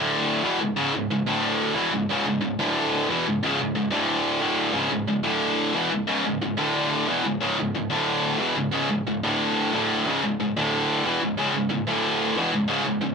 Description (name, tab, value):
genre	metal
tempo	181 BPM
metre	4/4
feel	straight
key	C# phrygian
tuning	A4 = 440 Hz
part	tight distorted guitar	solo	0.0-13.1 s	C#2 to E3	-21 LUFS	equal	distortion
room	little or no reverb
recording	rough home demo mix, faint mains hum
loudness	-21 LUFS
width	side -5 dB against mid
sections	0.0-10.1 A section; 10.1-13.1 B section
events	none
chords	0.4 C#m; 1.3 D5; 1.8 C#m; 2.6 D5; 3.1 C#m; 3.9 D5; 4.8 C#5; 5.2 D5; 5.7 C#m; 6.6 D5; 7.1 C#m; 7.9 D5; 8.4 C#m; 9.2 D5; 10.1 C#5; 10.6 D5; 11.0 C#m; 11.9 D5; 12.4 C#m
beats	0.11 0.44 | 0.77 1.10 1.43 1.77 | 2.10 2.43 2.76 3.09 | 3.42 3.76 4.09 4.42 | 4.75 5.08 5.42 5.75 | 6.08 6.41 6.74 7.07 | 7.41 7.74 8.07 8.40 | 8.73 9.06 9.39 9.72 | 10.05 10.39 10.72 11.05 | 11.38 11.71 12.04 12.37 | 12.70 13.03